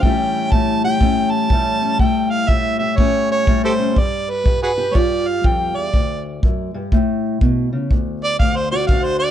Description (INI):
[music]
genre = acoustic country blues, solo or duo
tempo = 122 BPM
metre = 4/4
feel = swing 62% on 8ths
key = unclear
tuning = A4 = 440 Hz
[part]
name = warm harmonica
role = melody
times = 0.0-9.3 s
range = F#4 to A5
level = -20 LUFS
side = right 2 dB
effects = none
[part]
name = fingerpicked steel-string acoustic guitar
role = accompaniment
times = 0.0-9.3 s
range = D2 to G4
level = -20 LUFS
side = left 2 dB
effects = none
[part]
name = kick drum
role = drums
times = 0.0-9.0 s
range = none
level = -17 LUFS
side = equal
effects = none
[sound]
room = light reverb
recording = dark, warm production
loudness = -15 LUFS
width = side -10 dB against mid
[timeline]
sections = 0.0-7.9 A section; 7.9-9.3 B section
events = harmonica solo 7.9-9.3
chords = 0.0 A7; 4.0 G7; 5.9 D; 6.9 A; 7.9 D7